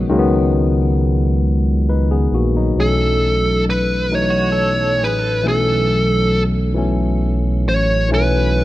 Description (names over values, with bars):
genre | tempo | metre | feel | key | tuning
slow six-eight R&B | 45 BPM (dotted quarters) | 6/8 | straight | B mixolydian | A4 = 439 Hz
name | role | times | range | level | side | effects
barky tine electric piano | accompaniment | 0.0-8.6 s | D#3 to B4 | -19 LUFS | left 3 dB | overdrive
smooth synth bass | bass | 0.0-8.6 s | A1 to C#2 | -18 LUFS | right 1 dB | none
fuzz lead guitar | melody | 2.8-8.6 s | A4 to C#5 | -18 LUFS | right 1 dB | distortion
electric guitar at the edge of break-up | second line | 4.3-6.5 s | F#4 to A4 | -28 LUFS | right 3 dB | tremolo
room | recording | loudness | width
light reverb, digital ambience | rough home demo mix | -14 LUFS | side -16 dB against mid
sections
0.1-2.8 A section; 2.8-8.6 B section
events
none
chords
0.1 C#9sus4; 2.8 B9sus4